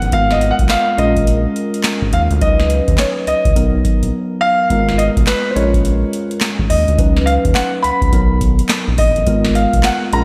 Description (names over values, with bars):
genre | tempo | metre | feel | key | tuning
R&B, new jack swing | 105 BPM | 4/4 | swing 63% on 16ths | G# dorian | A4 = 440 Hz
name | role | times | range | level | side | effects
warm concert grand piano | melody | 0.0-10.2 s | B4 to B5 | -20 LUFS | equal | tape echo
mellow tine electric piano | accompaniment | 0.0-10.2 s | F#3 to B4 | -22 LUFS | equal | lush chorus
round analog bass | bass | 0.0-10.2 s | G#1 to D#2 | -20 LUFS | equal | none
booming analog drum machine | drums | 0.0-10.2 s | handclaps, hi-hat, kick drum, snare drum | -20 LUFS | equal | none
room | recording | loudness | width
moderate plate reverb, RT60 2.2 s | dreamy mix soaked in reverb | -15 LUFS | mono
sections
0.0-4.7 A section; 4.7-10.2 B section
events
silent gap 4.1-4.7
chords
0.1 G#m69; 1.0 A#m7; 2.4 C#9sus4; 3.6 Bmaj7; 4.7 G#m69; 5.6 A#m7; 7.0 C#9sus4; 8.1 Bmaj7; 9.3 G#m69